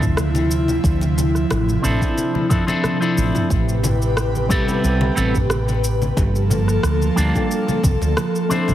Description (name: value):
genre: sunset chillout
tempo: 90 BPM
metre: 4/4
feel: swing 53% on 16ths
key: D minor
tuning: A4 = 440 Hz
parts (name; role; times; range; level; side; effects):
- electric guitar with an envelope filter; accompaniment; 0.0-8.7 s; F3 to C5; -23 LUFS; moving between left 3 dB and right 3 dB; auto-pan, ping-pong delay
- airy breathy pad; sustained chords; 0.0-8.7 s; C3 to B4; -22 LUFS; equal; chorus
- woody fretless electric bass; bass; 0.0-8.7 s; G1 to D2; -20 LUFS; equal; lush chorus
- deep house drum kit; drums; 0.0-8.7 s; rim click, shaker, toms; -25 LUFS; right 1 dB; none
- electronic kick drum; drums; 0.0-8.0 s; none; -21 LUFS; equal; none
- congas; percussion; 0.2-8.7 s; none; -28 LUFS; left 3 dB; none
room: light reverb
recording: heavily compressed radio sound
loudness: -16 LUFS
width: side -12 dB against mid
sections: 0.0-8.7 A section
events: none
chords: 0.0 Dm9; 3.5 Am9; 6.2 Gm9